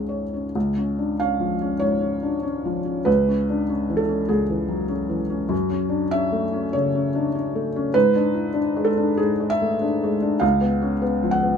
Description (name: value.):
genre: neoclassical minimalist piano.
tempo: 98 BPM.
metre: 4/4.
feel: rubato.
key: unclear.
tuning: A4 = 444 Hz.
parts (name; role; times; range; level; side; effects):
felt-muted upright piano; solo; 0.0-11.6 s; C#2 to F#5; -20 LUFS; equal; none.
room: light reverb.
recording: minimal, uncompressed stereo recording.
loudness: -20 LUFS.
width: side -7 dB against mid.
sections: 0.5-11.6 A section.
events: none.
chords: 0.0 C#; 3.1 C#m7; 5.5 F#m; 7.9 G#dim; 10.4 C#7.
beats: | 0.55 1.19 1.81 2.44 | 3.06 3.68 4.29 4.90 | 5.52 6.13 6.74 7.35 | 7.95 8.56 9.19 9.83 | 10.43 11.02.